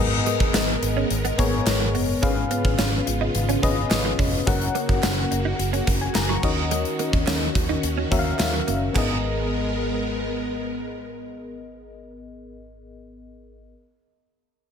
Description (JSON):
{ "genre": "1980s-style pop", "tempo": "107 BPM", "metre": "4/4", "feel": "straight", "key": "G# dorian", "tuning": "A4 = 442 Hz", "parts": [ { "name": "FM electric piano with tremolo", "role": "accompaniment", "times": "0.0-13.7 s", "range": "G#1 to C#6", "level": "-27 LUFS", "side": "left 5 dB", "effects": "none" }, { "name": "string machine, violas", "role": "sustained chords", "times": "0.0-12.0 s", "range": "C#3 to A#4", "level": "-29 LUFS", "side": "right 1 dB", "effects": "ensemble chorus" }, { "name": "direct-recorded clean electric guitar", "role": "riff", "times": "0.0-9.1 s", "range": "F#3 to D#4", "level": "-31 LUFS", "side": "right 10 dB", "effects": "ensemble chorus, ping-pong delay" }, { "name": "vintage muted fingered electric bass", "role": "bass", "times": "0.0-12.7 s", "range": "E#1 to D#2", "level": "-27 LUFS", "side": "right 1 dB", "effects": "none" }, { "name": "gated 80s drum kit", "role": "drums", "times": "0.3-9.1 s", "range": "crash cymbal, hi-hat, kick drum, snare drum, tambourine", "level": "-24 LUFS", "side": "equal", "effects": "none" }, { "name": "group handclap", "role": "percussion", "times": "0.5-9.2 s", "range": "none", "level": "-40 LUFS", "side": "right 9 dB", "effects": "none" } ], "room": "light reverb, small room ambience", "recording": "none", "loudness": "-20 LUFS", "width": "side -7 dB against mid", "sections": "0.0-9.0 A section; 9.0-11.2 B section", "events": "none", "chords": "0.0 G#madd9; 2.2 C#7/G#; 4.5 F#; 6.4 D#m7; 9.0 G#madd9" }